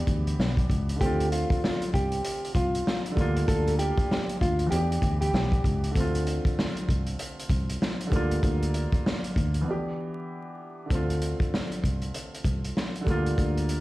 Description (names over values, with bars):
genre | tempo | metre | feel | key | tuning
hip hop, boom-bap hip-hop | 97 BPM | 4/4 | swing 61% on 16ths | D minor | A4 = 443 Hz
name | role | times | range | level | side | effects
warm concert grand piano | accompaniment | 0.0-13.8 s | D3 to G4 | -32 LUFS | right 1 dB | high-pass filter, low-pass filter
fingered electric bass | bass | 0.0-13.8 s | B1 to E2 | -27 LUFS | equal | none
vintage drum kit | drums | 0.1-13.8 s | hi-hat, kick drum, snare drum | -28 LUFS | equal | none
mellow electric guitar | melody | 1.0-5.9 s | F4 to A4 | -30 LUFS | equal | high-pass filter, low-pass filter
room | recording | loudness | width
light reverb | played on a big sound system in a bare room, stone room reverb, vinyl crackle | -24 LUFS | side -18 dB against mid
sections
0.0-1.0 A section; 1.0-10.9 B section; 10.9-13.8 A section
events
break 9.7-10.9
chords
0.0 Em7; 1.0 Dm7; 3.2 Gm7/D; 4.7 Em7; 6.0 Dm7; 8.1 Gm7/D; 9.7 Em7; 10.9 Dm7; 13.1 Gm7/D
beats
0.39 | 1.01 1.62 2.24 2.86 | 3.48 4.10 4.72 5.34 | 5.96 6.57 7.19 7.81 | 8.43 9.05 9.67 10.29 | 10.90 11.52 12.14 12.76 | 13.38